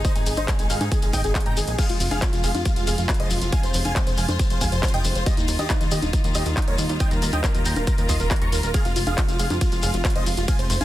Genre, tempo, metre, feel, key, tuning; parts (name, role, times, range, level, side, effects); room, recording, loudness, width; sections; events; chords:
uplifting trance; 138 BPM; 4/4; straight; F minor; A4 = 441 Hz
big supersaw lead; melody; 0.0-10.8 s; Eb4 to Db6; -28 LUFS; right 1 dB; phaser, sidechain pumping, dub echo
dark baby grand piano; second line; 0.0-10.8 s; Eb4 to Db6; -34 LUFS; right 1 dB; sidechain pumping, dub echo
rich chamber string section; sustained chords; 0.0-10.8 s; C3 to F4; -31 LUFS; left 1 dB; sidechain pumping
plucky analog bass; bass; 0.0-10.8 s; Eb1 to Ab2; -26 LUFS; equal; tube saturation, sidechain pumping
big-room dance drum kit; drums; 0.0-10.8 s; congas, crash cymbal, handclaps, hi-hat, ride cymbal; -29 LUFS; equal
electronic kick drum; drums; 0.0-10.6 s; -22 LUFS; equal
shekere; percussion; 0.0-10.8 s; -33 LUFS; left 4 dB
digital ambience; dense, heavily limited modern master; -20 LUFS; side -14 dB against mid
0.0-10.8 A section
0.0 Ab; 1.8 Fm; 5.3 Ebadd9; 8.7 Fm